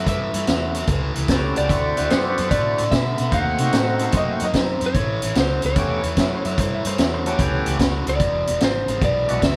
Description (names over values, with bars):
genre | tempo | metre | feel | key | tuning
electric blues shuffle | 148 BPM | 4/4 | swing 66% on 8ths | A mixolydian | A4 = 440 Hz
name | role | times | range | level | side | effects
lightly driven lead guitar | melody | 0.0-9.6 s | C5 to F#5 | -27 LUFS | equal | none
raw garage guitar | riff | 0.0-9.6 s | E2 to B#3 | -29 LUFS | equal | overdrive
vintage muted fingered electric bass | bass | 0.0-9.6 s | E1 to B#2 | -28 LUFS | equal | none
vintage drum kit | drums | 0.1-9.6 s | hi-hat, kick drum, snare drum | -24 LUFS | equal | none
tonewheel organ | accompaniment | 1.3-9.4 s | G#3 to A4 | -28 LUFS | equal | slow rotary speaker, overdrive
bright upright piano | second line | 4.0-7.9 s | C#4 to E5 | -31 LUFS | equal | none
room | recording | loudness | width
moderate studio reverb, RT60 0.7 s | band playing live in one room | -21 LUFS | mono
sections
0.0-9.6 A section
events
none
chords
0.0 A9; 1.7 D9; 3.3 D#dim7; 5.0 A9; 8.2 E9